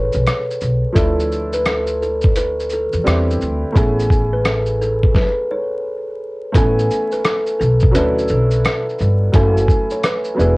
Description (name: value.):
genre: lo-fi hip hop.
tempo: 86 BPM.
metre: 4/4.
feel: swing 62% on 16ths.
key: A major.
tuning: A4 = 441 Hz.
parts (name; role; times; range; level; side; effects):
kalimba; melody; 0.0-10.6 s; G#4 to C#5; -20 LUFS; equal; low-pass filter, cassette tape.
clear upright piano; accompaniment; 0.0-10.6 s; E3 to G#5; -23 LUFS; right 1 dB; low-pass filter, cassette tape.
upright bass; bass; 0.0-10.6 s; E1 to E2; -18 LUFS; equal; transformer saturation.
lo-fi sampler-style drum kit; drums; 0.1-10.6 s; hi-hat, kick drum, rim click, shaker, snare drum; -17 LUFS; equal; none.
room: light reverb.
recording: home recording on cassette, vinyl crackle, nothing above 10.8 kHz.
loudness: -14 LUFS.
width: side -24 dB against mid.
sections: 0.0-6.5 A section; 6.5-10.6 B section.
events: stop 5.1-6.5.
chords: 0.0 Amaj9; 1.0 Dmadd9; 3.1 D9sus4; 3.8 Amaj9; 7.9 Dmaj9; 9.3 F#m9.